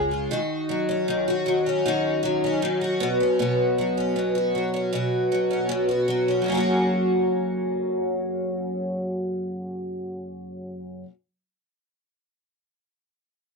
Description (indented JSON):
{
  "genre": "pop",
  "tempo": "78 BPM",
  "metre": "4/4",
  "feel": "straight",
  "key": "F# major",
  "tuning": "A4 = 439 Hz",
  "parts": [
    { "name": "picked twelve-string acoustic guitar", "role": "accompaniment", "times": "0.0-11.1 s", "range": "F#2 to G#4", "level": "-22 LUFS", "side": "equal", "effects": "double-tracked left and right" }
  ],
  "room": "little or no reverb",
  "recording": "dry, close 1970s-style studio recording",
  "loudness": "-22 LUFS",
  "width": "side -4 dB against mid",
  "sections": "0.0-6.5 A section; 6.5-9.6 B section",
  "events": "none",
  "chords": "0.3 D#m7; 3.0 Bsus2; 6.5 F#",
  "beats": "| 0.30 1.07 1.84 2.61 | 3.38 4.15 4.92 5.70 | 6.47 7.24 8.01 8.78"
}